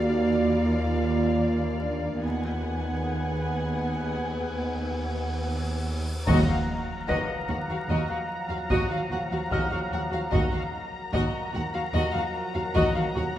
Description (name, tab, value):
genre	cinematic, suspense film score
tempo	74 BPM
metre	5/4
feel	straight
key	Eb harmonic minor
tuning	A4 = 442 Hz
part	warm studio violin section	melody	0.0-13.4 s	F5 to Bb5	-37 LUFS	left 3 dB	none
part	warm chamber violin section	second line	0.0-13.4 s	D5 to Gb5	-34 LUFS	left 2 dB	none
part	rich studio viola section	accompaniment	0.0-13.4 s	Bb3 to Gb4	-31 LUFS	right 2 dB	none
part	dark French horn section	sustained chords	0.0-13.4 s	F3 to Gb4	-36 LUFS	left 2 dB	none
part	warbly tape-like pad	sustained chords	0.0-13.4 s	F4 to Bb5	-36 LUFS	equal	chorus, built-in reverb
part	warm chamber cello section	bass	0.0-13.4 s	Eb2	-31 LUFS	right 1 dB	none
part	warm chamber double bass section	bass	0.0-13.2 s	Eb2	-32 LUFS	right 1 dB	none
part	cymbal swell and impact	sound effects	4.6-10.3 s	none	-37 LUFS	left 1 dB	none
part	taiko ensemble	drums	6.3-13.4 s	none	-31 LUFS	equal	none
part	timpani	percussion	6.3-7.5 s	Eb3	-30 LUFS	equal	none
part	dark grand piano	texture	7.1-13.4 s	Cb5 to Bb6	-37 LUFS	left 1 dB	none
room	moderate scoring stage reverb, RT60 1.9 s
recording	dark, warm production, vinyl crackle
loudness	-24 LUFS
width	side -12 dB against mid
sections	0.0-6.3 A section; 6.3-13.4 A section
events	cymbal swell 4.6-6.3; band accent 6.3-7.1; impact 6.3-10.3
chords	0.0 Bb/Eb; 2.2 Abm7/Eb; 6.3 Ebmadd9